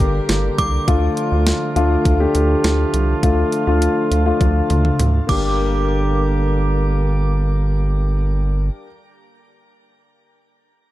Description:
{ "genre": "synth-pop", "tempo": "102 BPM", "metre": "4/4", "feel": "straight", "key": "G minor", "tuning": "A4 = 441 Hz", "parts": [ { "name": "dark concert grand piano", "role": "accompaniment", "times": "0.0-8.9 s", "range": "A3 to G4", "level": "-21 LUFS", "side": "left 3 dB", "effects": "shimmer reverb" }, { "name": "warm brass ensemble", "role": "sustained chords", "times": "0.0-8.7 s", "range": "D3 to G4", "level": "-24 LUFS", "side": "right 1 dB", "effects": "shimmer reverb" }, { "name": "rubbery square bass", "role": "bass", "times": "0.0-8.7 s", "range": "G1 to D2", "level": "-18 LUFS", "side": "equal", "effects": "none" }, { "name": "clean 12-bit digital drum machine", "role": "drums", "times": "0.0-5.4 s", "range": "crash cymbal, hi-hat, kick drum, snare drum, toms", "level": "-20 LUFS", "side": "equal", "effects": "overdrive" }, { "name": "synth chime", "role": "second line", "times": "0.6-0.7, 5.3-7.3 s", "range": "D6", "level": "-28 LUFS", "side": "right 2 dB", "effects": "ensemble chorus, tape echo, shimmer reverb" } ], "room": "light reverb, digital ambience", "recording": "dark, warm production", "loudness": "-15 LUFS", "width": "side -15 dB against mid", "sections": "0.0-5.6 A section; 5.6-7.9 B section", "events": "drum fill 4.4-5.6", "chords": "0.0 Gm; 0.9 Dm; 5.3 Gm" }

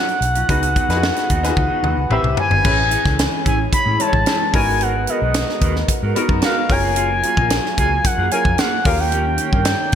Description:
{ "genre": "polished 1980s jazz-funk pop", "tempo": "111 BPM", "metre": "4/4", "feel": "straight", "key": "unclear", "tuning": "A4 = 439 Hz", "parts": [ { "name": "expressive synth lead", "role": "melody", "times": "0.0-9.9 s", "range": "D#5 to B5", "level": "-20 LUFS", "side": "left 1 dB", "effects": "chorus" }, { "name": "clear baby grand piano", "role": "accompaniment", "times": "0.0-9.9 s", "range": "G#3 to C#5", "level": "-25 LUFS", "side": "left 3 dB", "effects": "lush chorus" }, { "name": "mellow electric guitar", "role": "riff", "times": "0.0-9.8 s", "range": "F#3 to B4", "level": "-26 LUFS", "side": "right 6 dB", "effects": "lush chorus" }, { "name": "tight funk drum kit", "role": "drums", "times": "0.1-9.9 s", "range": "crash cymbal, hi-hat, kick drum, snare drum, toms", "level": "-20 LUFS", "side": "equal", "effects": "gated reverb" }, { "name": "vintage muted fingered electric bass", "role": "bass", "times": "0.2-9.9 s", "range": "F#1 to A2", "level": "-22 LUFS", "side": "equal", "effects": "none" }, { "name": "lush unison pad", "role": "sustained chords", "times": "2.6-9.9 s", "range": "D#3 to A#4", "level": "-28 LUFS", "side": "equal", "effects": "chorus" } ], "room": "light reverb, small room reverb", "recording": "bright 1980s-style digital production", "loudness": "-15 LUFS", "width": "side -9 dB against mid", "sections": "0.0-2.6 A section; 2.6-9.9 B section", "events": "drum fill 1.6-2.6", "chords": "0.5 C#9sus4; 2.1 Am9; 2.6 Amaj7; 4.5 G#m9; 6.7 F#maj9; 8.9 D#7" }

